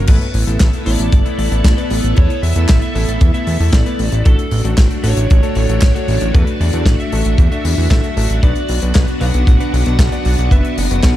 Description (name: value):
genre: italo disco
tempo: 115 BPM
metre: 4/4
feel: straight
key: unclear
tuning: A4 = 440 Hz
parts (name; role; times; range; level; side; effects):
- lead guitar through a small cranked amp; melody; 0.0-11.1 s; A4 to F#5; -25 LUFS; equal; overdrive, tape echo
- string machine, full ensemble; sustained chords; 0.0-11.2 s; A3 to A4; -22 LUFS; right 1 dB; ensemble chorus
- bright electric grand piano; stabs; 0.0-11.2 s; A3 to F#5; -25 LUFS; left 5 dB; none
- fat analog bass; bass; 0.0-11.1 s; F#1 to E2; -16 LUFS; equal; none
- kick drum; drums; 0.1-11.1 s; none; -12 LUFS; equal; none
- modern studio drum kit; drums; 0.1-11.1 s; crash cymbal, handclaps, hi-hat, snare drum; -23 LUFS; left 1 dB; none
room: studio ambience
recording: none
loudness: -12 LUFS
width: side -14 dB against mid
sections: 0.1-11.2 A section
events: none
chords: 0.1 Asus2; 4.3 D/A; 8.4 Bm